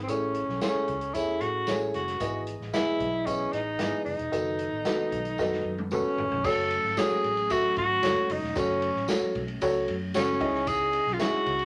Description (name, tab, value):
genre	uptempo 1960s-style soul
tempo	113 BPM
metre	4/4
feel	straight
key	unclear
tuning	A4 = 439 Hz
part	breathy tenor saxophone	melody	0.0-11.7 s	C4 to A4	-30 LUFS	equal	none
part	percussive tonewheel organ	sustained chords	0.0-11.7 s	C#3 to D#5	-43 LUFS	equal	fast rotary speaker
part	vintage muted fingered electric bass	bass	0.0-11.7 s	E1 to A2	-41 LUFS	equal	none
part	dark upright piano	accompaniment	0.1-11.5 s	G#2 to E5	-32 LUFS	equal	none
part	swinging big-band drum kit	drums	0.1-11.7 s	crash cymbal, hi-hat, kick drum, ride cymbal, snare drum, toms	-38 LUFS	equal	none
part	tambourine	percussion	0.1-11.3 s	none	-47 LUFS	equal	none
room	moderate large studio reverb, RT60 0.8 s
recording	none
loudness	-28 LUFS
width	mono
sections	0.0-6.4 A section; 6.4-11.7 B section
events	drum fill 5.4-6.4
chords	0.1 Amaj7; 2.2 Emaj7/G#; 4.3 B7/F#; 6.4 F#m; 10.4 C#madd9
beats	| 0.09 0.61 1.15 1.68 | 2.21 2.73 3.27 3.79 | 4.33 4.86 5.38 5.91 | 6.44 6.97 7.50 8.03 | 8.56 9.09 9.61 10.14 | 10.67 11.20